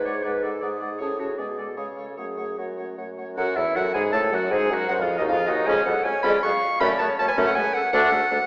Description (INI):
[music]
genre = quick classical-period movement for wind quintet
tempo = 157 BPM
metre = 3/4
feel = rubato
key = F# minor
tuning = A4 = 440 Hz
[part]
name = clear clarinet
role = accompaniment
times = 0.0-8.5 s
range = F#4 to C#6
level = -25 LUFS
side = equal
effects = none
[part]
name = mellow French horn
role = accompaniment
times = 0.0-8.4 s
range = D#3 to C#4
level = -29 LUFS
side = equal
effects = none
[part]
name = mellow bassoon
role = bass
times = 0.0-8.4 s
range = D2 to C#3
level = -27 LUFS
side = equal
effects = none
[part]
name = mellow hollow concert flute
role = melody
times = 0.1-8.2 s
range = F#4 to A5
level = -30 LUFS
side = left 1 dB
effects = none
[part]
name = clear oboe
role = second line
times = 0.1-8.4 s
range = B3 to D5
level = -28 LUFS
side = equal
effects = none
[sound]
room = wet recital hall reverb, RT60 1.9 s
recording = heard from further back in the room, small speaker sound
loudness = -20 LUFS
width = side -25 dB against mid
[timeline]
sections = 0.0-3.4 A section; 3.4-8.5 A section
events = none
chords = 0.0 G#m7b5; 1.0 F#m/A; 1.4 G#dim/B; 1.8 C#5; 2.2 F#m; 4.5 G#5; 5.7 C#/E#; 6.8 F#m; 7.9 D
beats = 0.24 0.62 | 1.00 1.39 1.77 | 2.18 2.58 2.98 | 3.38 3.76 4.14 | 4.53 4.91 5.29 | 5.67 6.05 6.43 | 6.81 7.19 7.56 | 7.93 8.31